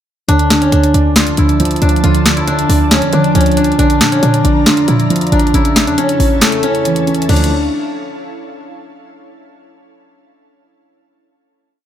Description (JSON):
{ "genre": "hip hop, trap", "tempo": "137 BPM", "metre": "4/4", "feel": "half-time", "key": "D harmonic minor", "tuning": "A4 = 441 Hz", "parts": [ { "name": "steel-string zither", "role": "melody", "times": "0.3-7.5 s", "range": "A3 to F4", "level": "-15 LUFS", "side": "left 2 dB", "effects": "digital delay" }, { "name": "dark concert grand piano", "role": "accompaniment", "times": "0.3-7.5 s", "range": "C#3 to D4", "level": "-17 LUFS", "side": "right 3 dB", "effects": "none" }, { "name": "ethereal airy pad", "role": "sustained chords", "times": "0.9-7.5 s", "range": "F3 to Bb5", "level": "-21 LUFS", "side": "right 2 dB", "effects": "ensemble chorus, built-in reverb" }, { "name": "short 808-style bass", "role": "bass", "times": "0.3-7.7 s", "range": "A1 to F3", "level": "-14 LUFS", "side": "equal", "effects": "none" }, { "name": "trap drum kit", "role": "drums", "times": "0.3-7.5 s", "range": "crash cymbal, hi-hat, snare drum", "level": "-16 LUFS", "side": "left 1 dB", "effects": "none" } ], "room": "light reverb, digital ambience", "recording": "none", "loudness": "-10 LUFS", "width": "side -10 dB against mid", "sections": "0.3-7.3 hook; 7.3-9.0 final chord", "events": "kick muted 6.4-7.3", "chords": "0.3 Dm; 3.8 Bb; 5.5 A; 7.3 Dm" }